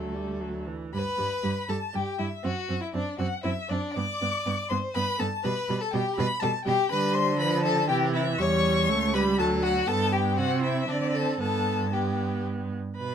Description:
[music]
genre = quick classical-period movement for string quartet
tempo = 120 BPM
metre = 3/4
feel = straight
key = G major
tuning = A4 = 440 Hz
[part]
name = rich violin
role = melody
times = 0.0-13.1 s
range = A4 to D6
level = -30 LUFS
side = left 5 dB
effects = none
[part]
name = rich violin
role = second line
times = 0.0-12.4 s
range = A3 to D5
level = -30 LUFS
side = left 3 dB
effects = none
[part]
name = warm viola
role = accompaniment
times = 0.0-13.1 s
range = E3 to B4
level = -30 LUFS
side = right 3 dB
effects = none
[part]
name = warm cello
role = bass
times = 0.0-13.1 s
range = C#2 to D3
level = -30 LUFS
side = right 3 dB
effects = none
[sound]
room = light reverb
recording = close, detailed microphones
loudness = -24 LUFS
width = side -8 dB against mid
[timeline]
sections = 0.9-13.0 A section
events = none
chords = 0.0 D; 0.9 G; 2.4 D9/F#; 4.0 G; 5.4 G/B; 6.9 G5/D; 7.9 C; 8.4 A7/E; 9.4 D; 9.9 G; 10.4 C; 10.9 D5; 11.4 G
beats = 0.42 | 0.94 1.44 1.94 | 2.44 2.94 3.44 | 3.95 4.45 4.95 | 5.44 5.93 6.42 | 6.91 7.40 7.89 | 8.40 8.89 9.39 | 9.88 10.38 10.89 | 11.40 11.93 12.45 | 12.96

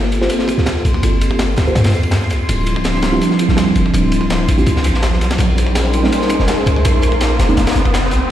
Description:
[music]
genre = drum and bass, jungle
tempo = 165 BPM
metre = 4/4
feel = straight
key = unclear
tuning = A4 = 440 Hz
[part]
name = airy breathy pad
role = sustained chords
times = 0.0-8.3 s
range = F3 to C5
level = -19 LUFS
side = right 1 dB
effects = chorus
[part]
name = warm 808-style bass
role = bass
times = 0.0-8.2 s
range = D1 to G2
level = -16 LUFS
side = equal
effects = none
[part]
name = crunchy breakbeat drum kit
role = drums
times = 0.0-8.2 s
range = kick drum, ride cymbal, snare drum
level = -21 LUFS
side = equal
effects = high-pass filter on kick, high-pass filter on cymbals, high-pass filter on snare, high-pass filter on room
[part]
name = riser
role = sound effects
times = 2.6-8.3 s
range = none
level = -24 LUFS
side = equal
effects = none
[part]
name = backwards swelling texture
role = texture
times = 0.4-8.3 s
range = C6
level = -28 LUFS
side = equal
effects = built-in reverb
[part]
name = crunchy breakbeat drum kit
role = drums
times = 0.1-8.2 s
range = hi-hat, snare drum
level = -28 LUFS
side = equal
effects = high-pass filter on hats, high-pass filter on snare, high-pass filter on room
[part]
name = deep mellow chord stab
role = stabs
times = 0.2-7.6 s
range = Ab3 to C5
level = -21 LUFS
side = right 2 dB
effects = chorus, dub echo
[sound]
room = moderate lush hall reverb, RT60 1.9 s, studio reverb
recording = played on a big sound system in a bare room, large studio reverb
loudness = -12 LUFS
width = side -11 dB against mid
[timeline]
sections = 0.0-8.3 A section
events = build-up 0.0-8.3; filter sweep on analog synth pad 0.0-8.3; filter sweep on synth stab 0.0-8.3; riser 2.6-8.3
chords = 0.0 Gm11; 2.5 Dm11; 5.4 Bbm11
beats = 0.30 0.67 | 1.03 1.39 1.76 2.12 | 2.48 2.85 3.21 3.58 | 3.94 4.30 4.67 5.03 | 5.39 5.76 6.12 6.49 | 6.85 7.21 7.58 7.94 | 8.30

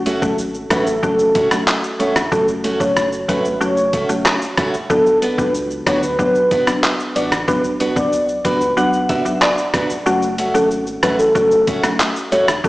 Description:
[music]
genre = dancehall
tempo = 93 BPM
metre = 4/4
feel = straight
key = F# minor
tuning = A4 = 443 Hz
[part]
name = warm velvety synth lead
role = melody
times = 0.0-12.7 s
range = F#4 to D5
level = -18 LUFS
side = equal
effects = chorus, tape echo
[part]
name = mallet-like synth pluck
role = accompaniment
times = 0.0-12.7 s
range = F#3 to F#4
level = -22 LUFS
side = equal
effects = chorus
[part]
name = sub bass with octave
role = bass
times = 0.0-12.7 s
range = E1 to D2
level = -33 LUFS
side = equal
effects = none
[part]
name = picked steel-string acoustic guitar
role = arpeggios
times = 0.1-12.5 s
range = A3 to F#4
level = -23 LUFS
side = right 1 dB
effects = tape echo
[part]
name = trip hop sampler-style drum kit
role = drums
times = 0.1-12.7 s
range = handclaps, hi-hat, kick drum, rim click, shaker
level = -20 LUFS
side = equal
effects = none
[part]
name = soft synth bell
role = second line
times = 8.8-9.9 s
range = D5 to F#5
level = -20 LUFS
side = equal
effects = chorus, tape echo
[sound]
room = moderate lush hall reverb, RT60 2.4 s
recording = played on a big sound system in a bare room, stone room reverb, small speaker sound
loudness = -14 LUFS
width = side -18 dB against mid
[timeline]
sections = 0.0-12.7 A section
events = kick muted 10.1-10.7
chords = 0.0 F#m; 4.9 Bm; 10.1 F#m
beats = 0.38 1.03 1.67 | 2.32 2.96 3.61 4.25 | 4.90 5.54 6.19 6.83 | 7.48 8.12 8.77 9.42 | 10.06 10.71 11.35 12.00 | 12.64

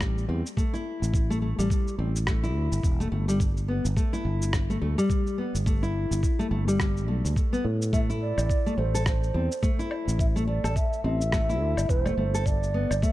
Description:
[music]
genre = organic downtempo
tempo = 106 BPM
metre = 4/4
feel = swing 59% on 16ths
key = A minor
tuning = A4 = 440 Hz
[part]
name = nylon-string guitar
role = arpeggios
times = 0.0-13.1 s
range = G3 to A4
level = -30 LUFS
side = left 2 dB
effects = tape echo
[part]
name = sustaining fretless electric bass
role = bass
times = 0.0-13.0 s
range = E1 to A2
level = -27 LUFS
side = equal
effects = sidechain pumping
[part]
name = electronic kick drum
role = drums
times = 0.0-13.1 s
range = none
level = -26 LUFS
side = equal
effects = none
[part]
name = electronic rim click, shaker and woodblock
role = drums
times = 0.0-13.1 s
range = none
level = -35 LUFS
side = equal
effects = none
[part]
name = breathy mellow low ney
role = melody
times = 7.9-13.1 s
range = C5 to E5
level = -31 LUFS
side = right 2 dB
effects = ping-pong delay
[sound]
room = little or no reverb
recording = dark, warm production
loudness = -24 LUFS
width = side -16 dB against mid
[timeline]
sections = 0.0-13.1 A section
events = none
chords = 0.0 A7(no3); 3.4 G; 7.9 Am; 12.5 G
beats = 0.01 0.57 | 1.14 1.70 2.27 2.84 | 3.40 3.97 4.53 5.10 | 5.67 6.23 6.80 7.36 | 7.93 8.50 9.06 9.63 | 10.20 10.76 11.33 11.89 | 12.46 13.03

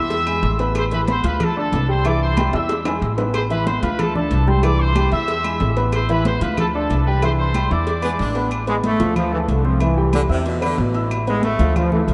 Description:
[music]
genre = latin, salsa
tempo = 186 BPM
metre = 4/4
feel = straight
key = A harmonic minor, A minor from 8.5 s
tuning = A4 = 439 Hz
[part]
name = bright trumpet section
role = melody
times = 0.0-8.4 s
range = A4 to E6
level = -27 LUFS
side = equal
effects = none
[part]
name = warm baby grand piano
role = accompaniment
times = 0.0-12.1 s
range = E3 to F6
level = -26 LUFS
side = equal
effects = none
[part]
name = upright bass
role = bass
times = 0.0-12.1 s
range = A1 to E2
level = -23 LUFS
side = equal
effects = none
[part]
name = agogo bells and timbales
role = percussion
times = 0.1-12.1 s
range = none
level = -32 LUFS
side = equal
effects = none
[part]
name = congas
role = percussion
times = 0.1-12.1 s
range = none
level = -29 LUFS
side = equal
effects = none
[part]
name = cowbell and bongos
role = percussion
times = 0.1-8.5 s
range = none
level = -32 LUFS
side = equal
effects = none
[part]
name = claves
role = percussion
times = 0.3-11.9 s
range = none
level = -40 LUFS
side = equal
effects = none
[part]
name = bright saxophone section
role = second line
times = 8.0-11.2 s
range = B2 to D4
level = -30 LUFS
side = equal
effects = none
[part]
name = brilliant trombone section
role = melody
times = 8.7-12.1 s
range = D3 to A3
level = -26 LUFS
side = equal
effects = none
[sound]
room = moderate cathedral reverb, RT60 5.9 s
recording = in a vast, echoing space, nothing above 11.0 kHz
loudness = -19 LUFS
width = mono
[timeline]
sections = 0.0-8.5 A section; 8.5-12.1 B section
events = drum fill 2.4-3.3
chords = 0.1 E; 0.8 Amadd9; 1.4 Dm; 2.0 C; 2.7 E; 3.3 Amadd9; 4.0 Dm; 4.6 C; 5.3 E; 5.9 Amadd9; 6.6 Dm; 7.2 C; 7.9 E7; 8.5 Asus2; 9.2 Dm; 9.8 C; 10.5 E5; 11.1 Asus2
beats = 0.11 0.43 | 0.75 1.08 1.40 1.72 | 2.05 2.37 2.69 3.02 | 3.34 3.66 3.99 4.31 | 4.63 4.96 5.28 5.61 | 5.93 6.25 6.58 6.90 | 7.22 7.54 7.87 8.19 | 8.52 8.84 9.16 9.49 | 9.81 10.13 10.46 10.78 | 11.11 11.43 11.76 12.08

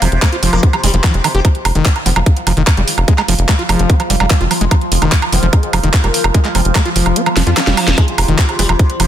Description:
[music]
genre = psychedelic trance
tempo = 147 BPM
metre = 4/4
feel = straight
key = F minor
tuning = A4 = 439 Hz
[part]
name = sitar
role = melody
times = 0.0-1.4, 8.0-9.1 s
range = C3 to Bb3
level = -23 LUFS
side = left 2 dB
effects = phaser, sidechain pumping, tape echo
[part]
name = overdriven acid bass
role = riff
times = 0.0-9.1 s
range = Eb3 to G4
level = -19 LUFS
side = moving between left 4 dB and right 4 dB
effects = distortion, auto-pan, sidechain pumping, tape echo
[part]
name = tight sequencer bass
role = bass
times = 0.0-9.1 s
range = F1 to F2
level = -15 LUFS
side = equal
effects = tube saturation
[part]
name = garage drum kit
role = drums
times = 0.0-9.1 s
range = handclaps, hi-hat, snare drum, woodblock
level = -17 LUFS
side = right 3 dB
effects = overdrive
[part]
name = electronic kick drum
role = drums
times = 0.2-8.9 s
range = none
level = -12 LUFS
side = equal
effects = overdrive
[part]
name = overtone-sweeping drone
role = sustained chords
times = 2.1-9.1 s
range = F3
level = -22 LUFS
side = right 2 dB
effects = chorus, built-in reverb, sidechain pumping
[part]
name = resonant blip pluck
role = second line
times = 2.1-8.8 s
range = Ab3 to C4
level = -26 LUFS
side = left 5 dB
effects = phaser, lush chorus, sidechain pumping, high-pass filter, tape echo
[part]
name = reverse cymbal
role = sound effects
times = 7.4-8.0 s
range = none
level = -25 LUFS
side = right 1 dB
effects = none
[sound]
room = light reverb, digital ambience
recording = dense, heavily limited modern master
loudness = -11 LUFS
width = side -10 dB against mid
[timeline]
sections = 0.0-8.0 A section; 8.0-9.1 B section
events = kick drops out 7.2-8.0; drum fill 7.4-8.0; reverse cymbal 7.4-8.0; drop 8.0-9.1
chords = 0.0 F5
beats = 0.22 0.63 1.04 | 1.45 1.86 2.26 2.67 | 3.08 3.49 3.90 4.30 | 4.71 5.12 5.53 5.94 | 6.34 6.75 7.16 7.57 | 7.98 8.39 8.79

